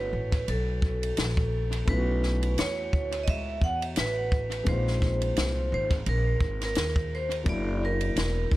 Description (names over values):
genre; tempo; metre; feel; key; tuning
hip hop, jazz-hop; 86 BPM; 4/4; swing 57% on 16ths; unclear; A4 = 441 Hz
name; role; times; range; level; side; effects
vibraphone with medium hard mallets; melody; 0.0-8.5 s; A4 to F#5; -31 LUFS; right 1 dB; tape echo
dark concert grand piano; accompaniment; 0.0-8.6 s; F#3 to F#4; -37 LUFS; left 3 dB; tape echo
upright bass; bass; 0.0-8.6 s; E1 to E2; -29 LUFS; equal; none
compact cocktail drum kit; drums; 0.3-8.6 s; hi-hat, kick drum, ride cymbal, snare drum; -29 LUFS; equal; tape echo
room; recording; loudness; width
small room reverb; echo-heavy mix; -25 LUFS; side -17 dB against mid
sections
0.0-8.6 A section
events
none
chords
0.0 B9sus4; 4.7 A#9sus4; 7.5 F#7b13